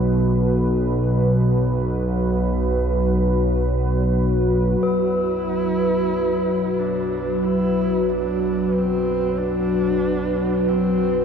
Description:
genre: dark ambient drone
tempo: free time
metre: none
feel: none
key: B phrygian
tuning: A4 = 440 Hz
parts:
  - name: deep dark ambient pad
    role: sustained chords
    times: 0.0-11.2 s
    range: F#3 to B4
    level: -20 LUFS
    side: right 1 dB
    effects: chorus, built-in reverb
  - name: analog drone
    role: drone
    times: 0.0-11.2 s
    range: B1 to B2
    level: -23 LUFS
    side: equal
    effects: chorus
  - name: bronze singing bowl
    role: texture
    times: 0.0-11.2 s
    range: B4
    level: -30 LUFS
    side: left 6 dB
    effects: none
  - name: rich horsehead fiddle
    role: melody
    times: 4.8-11.2 s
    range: C4 to E4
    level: -30 LUFS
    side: right 2 dB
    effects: diffuse ambient delay
room: wet huge ambient reverb, RT60 9.0 s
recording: worn, warbling old tape, cassette tape, warbly pitch drift, faint mains hum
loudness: -18 LUFS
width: side -7 dB against mid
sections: 0.0-4.8 A section; 4.8-11.2 B section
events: none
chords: 0.0 B5

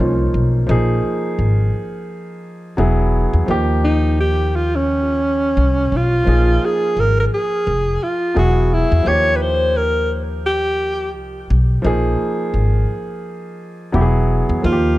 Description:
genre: hip hop, jazz-hop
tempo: 86 BPM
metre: 4/4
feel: swing 58% on 16ths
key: Bb dorian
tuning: A4 = 440 Hz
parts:
  - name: mellow alto saxophone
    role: melody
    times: 0.0-15.0 s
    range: Db4 to Db5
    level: -18 LUFS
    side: equal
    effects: plate reverb, analog delay
  - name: warm grand piano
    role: accompaniment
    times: 0.0-15.0 s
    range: F3 to Ab4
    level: -22 LUFS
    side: right 1 dB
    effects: plate reverb
  - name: upright bass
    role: bass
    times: 0.0-15.0 s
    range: E1 to E2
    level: -17 LUFS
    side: equal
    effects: none
room: moderate small room reverb, RT60 0.6 s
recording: dark, warm production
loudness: -15 LUFS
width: side -17 dB against mid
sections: 0.0-15.0 A section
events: none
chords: 0.0 Eb7sus2; 0.7 Bb5; 2.8 Eadd9; 3.5 Eb9; 6.3 Bb5; 8.4 Eadd9; 9.1 Ebadd9; 11.8 Bb5; 13.9 Eadd9

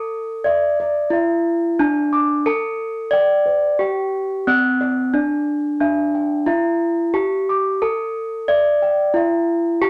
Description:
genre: gamelan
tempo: 90 BPM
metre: 4/4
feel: straight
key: D slendro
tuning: A4 = 442 Hz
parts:
  - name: gamelan-type bronze metallophone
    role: melody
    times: 0.0-9.9 s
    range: C4-45c to D5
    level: -20 LUFS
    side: equal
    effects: none
  - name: gamelan-type bossed gongs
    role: arpeggios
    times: 0.0-9.9 s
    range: C5-45c to D6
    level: -28 LUFS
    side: equal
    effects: none
room: wet small room reverb, RT60 0.5 s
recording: none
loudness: -19 LUFS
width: mono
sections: 0.0-9.9 A section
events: none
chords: none

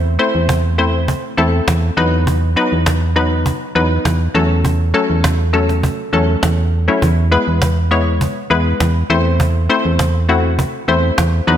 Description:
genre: dance-pop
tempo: 101 BPM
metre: 4/4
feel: straight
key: unclear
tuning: A4 = 440 Hz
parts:
  - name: hollow square pluck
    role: accompaniment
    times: 0.0-11.6 s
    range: F#3 to C#5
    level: -16 LUFS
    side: left 2 dB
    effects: chorus
  - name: solid FM bass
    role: bass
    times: 0.0-11.6 s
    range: E2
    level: -15 LUFS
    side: right 1 dB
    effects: none
  - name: cajon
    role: drums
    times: 0.5-11.3 s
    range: none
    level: -20 LUFS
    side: right 1 dB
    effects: none
room: moderate lush hall reverb, RT60 2.1 s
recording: bright 1980s-style digital production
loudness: -13 LUFS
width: side -10 dB against mid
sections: 0.0-11.6 A section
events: none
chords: 0.0 Am/E; 2.0 B/E; 4.3 F#m/E; 7.0 E; 9.1 Am/E

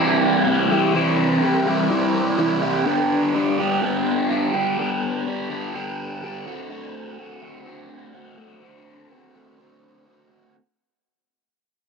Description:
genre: rock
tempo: 125 BPM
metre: 4/4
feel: straight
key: unclear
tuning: A4 = 440 Hz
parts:
  - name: raw garage guitar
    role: solo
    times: 0.0-10.5 s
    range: G2 to G4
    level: -19 LUFS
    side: equal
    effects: overdrive, phaser
room: little or no reverb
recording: dry, close 1970s-style studio recording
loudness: -18 LUFS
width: side -5 dB against mid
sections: 0.0-10.6 A section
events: fade-out 0.0-10.6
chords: 0.0 C; 2.9 G; 6.5 D5

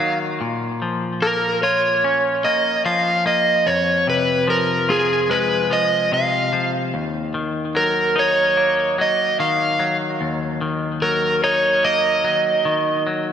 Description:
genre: rock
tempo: 74 BPM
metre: 4/4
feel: straight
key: Eb minor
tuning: A4 = 440 Hz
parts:
  - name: crunchy overdriven guitar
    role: melody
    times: 0.0-13.0 s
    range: Ab4 to F5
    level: -18 LUFS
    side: right 1 dB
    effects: slapback echo, digital delay
  - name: clean electric guitar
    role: arpeggios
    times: 0.0-13.3 s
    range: Eb2 to F4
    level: -22 LUFS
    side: left 3 dB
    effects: slapback echo, digital delay
room: wet lush hall reverb, RT60 2.4 s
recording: big arena sound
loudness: -17 LUFS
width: side -8 dB against mid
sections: 0.0-13.3 A section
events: none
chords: 0.4 Bbm; 3.7 Fm; 6.9 Ebm

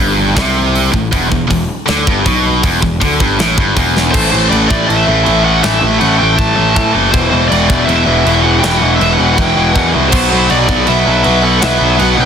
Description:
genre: heavy metal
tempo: 160 BPM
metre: 4/4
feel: straight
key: E minor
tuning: A4 = 440 Hz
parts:
  - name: heavy high-gain guitar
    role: riff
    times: 0.0-12.3 s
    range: E2 to B3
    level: -12 LUFS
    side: equal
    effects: distortion
  - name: fuzz picked electric bass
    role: bass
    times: 0.0-12.3 s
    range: E1 to A2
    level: -16 LUFS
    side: equal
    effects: overdrive
  - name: tight metal drum kit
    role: drums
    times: 0.0-12.1 s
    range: china cymbal, crash cymbal, hi-hat, kick drum, snare drum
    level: -17 LUFS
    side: equal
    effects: soft clipping on kick
  - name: high-gain lead guitar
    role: melody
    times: 4.1-12.3 s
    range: C5 to A5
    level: -16 LUFS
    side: equal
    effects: distortion, ping-pong delay
  - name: high-gain lead guitar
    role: second line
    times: 9.4-12.3 s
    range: E4 to B4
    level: -22 LUFS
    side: right 3 dB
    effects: distortion
room: little or no reverb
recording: dense, heavily limited modern master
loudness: -9 LUFS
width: side -7 dB against mid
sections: 0.0-4.1 A section; 4.1-12.3 B section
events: drum fill 3.9; half time 4.1-12.3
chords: 0.0 A5; 1.1 Em; 4.1 A5; 7.1 Em; 10.1 B5

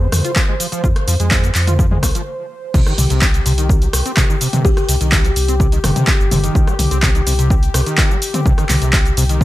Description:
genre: acid house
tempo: 126 BPM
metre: 4/4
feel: straight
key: C minor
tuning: A4 = 439 Hz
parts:
  - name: warm analog pad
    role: sustained chords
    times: 0.0-9.4 s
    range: G4 to C5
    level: -26 LUFS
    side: left 3 dB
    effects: chorus, sidechain pumping
  - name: overdriven acid bass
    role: riff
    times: 0.0-9.4 s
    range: C3 to F4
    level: -22 LUFS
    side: equal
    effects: distortion, tube saturation, ensemble chorus, cassette tape, ping-pong delay
  - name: round analog bass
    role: bass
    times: 0.0-9.4 s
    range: G1 to F2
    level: -17 LUFS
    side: equal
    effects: sidechain pumping
  - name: punchy analog drum machine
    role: drums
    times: 0.1-9.4 s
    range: crash cymbal, handclaps, hi-hat, rim click, shaker, toms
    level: -19 LUFS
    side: left 1 dB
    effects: overdrive
  - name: electronic kick drum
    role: drums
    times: 0.4-9.4 s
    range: none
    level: -15 LUFS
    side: equal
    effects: overdrive
  - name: buzzing kalimba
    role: melody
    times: 4.6-4.8 s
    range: G4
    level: -27 LUFS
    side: left 2 dB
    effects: digital delay
room: digital ambience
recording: none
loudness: -13 LUFS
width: side -16 dB against mid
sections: 0.0-2.7 A section; 2.7-9.4 B section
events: break 2.3-2.7; drop 2.7-9.4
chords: 0.0 Fm; 2.7 Cm

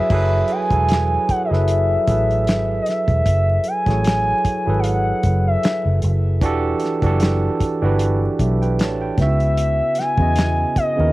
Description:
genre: R&B, neo-soul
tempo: 76 BPM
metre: 4/4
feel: swing 54% on 16ths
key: F# minor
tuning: A4 = 440 Hz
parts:
  - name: gliding portamento lead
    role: melody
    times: 0.0-11.1 s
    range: D#5 to G#5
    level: -20 LUFS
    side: left 1 dB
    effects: chorus, phaser, cassette tape
  - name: barky tine electric piano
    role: accompaniment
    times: 0.0-11.1 s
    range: C#3 to A5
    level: -22 LUFS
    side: right 3 dB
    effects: cassette tape
  - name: vintage muted fingered electric bass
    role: bass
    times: 0.1-11.1 s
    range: E1 to E2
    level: -19 LUFS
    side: equal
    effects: none
  - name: damped 70s drum kit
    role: drums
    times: 0.1-11.0 s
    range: crash cymbal, handclaps, hi-hat, kick drum, snare drum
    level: -21 LUFS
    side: equal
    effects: cassette tape
room: small room reverb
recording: home recording on cassette, vinyl crackle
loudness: -16 LUFS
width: side -18 dB against mid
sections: 0.1-11.1 A section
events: none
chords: 0.0 F#m11; 6.4 Em11; 9.2 C#m11

